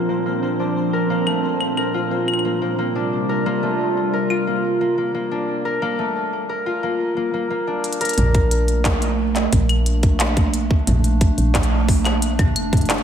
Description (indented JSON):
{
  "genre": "IDM",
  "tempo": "89 BPM",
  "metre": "4/4",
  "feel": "straight",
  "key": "Bb major",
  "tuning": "A4 = 440 Hz",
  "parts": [
    { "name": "warbly tape-like pad", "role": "sustained chords", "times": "0.0-13.0 s", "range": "Bb2 to F4", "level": "-23 LUFS", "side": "right 2 dB", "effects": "chorus, built-in reverb" },
    { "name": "concert harp", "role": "arpeggios", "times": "0.0-10.7 s", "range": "A3 to Bb4", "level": "-22 LUFS", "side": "left 1 dB", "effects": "low-pass filter, ping-pong delay" },
    { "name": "pulsing gated texture", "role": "texture", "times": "0.0-5.5 s", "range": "C4 to C5", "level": "-32 LUFS", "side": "right 2 dB", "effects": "chorus, built-in reverb" },
    { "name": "glitchy drum kit", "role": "drums", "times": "1.3-13.0 s", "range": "claves, handclaps, hi-hat, toms", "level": "-23 LUFS", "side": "equal", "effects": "none" },
    { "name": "woody FM bass", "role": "bass", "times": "8.2-13.0 s", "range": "F1 to Bb1", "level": "-20 LUFS", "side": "equal", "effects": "none" },
    { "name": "electronic kick drum", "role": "drums", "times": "8.3-12.9 s", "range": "none", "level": "-19 LUFS", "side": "equal", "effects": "none" }
  ],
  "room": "moderate lush hall reverb, RT60 2.8 s",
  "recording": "big arena sound",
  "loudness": "-17 LUFS",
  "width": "side -8 dB against mid",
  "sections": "0.0-8.2 A section; 8.2-13.0 B section",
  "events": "break 5.5-8.2; drum fill 7.8-8.2",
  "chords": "0.0 Bbmaj9; 2.8 C7sus4; 8.2 Bbmaj7"
}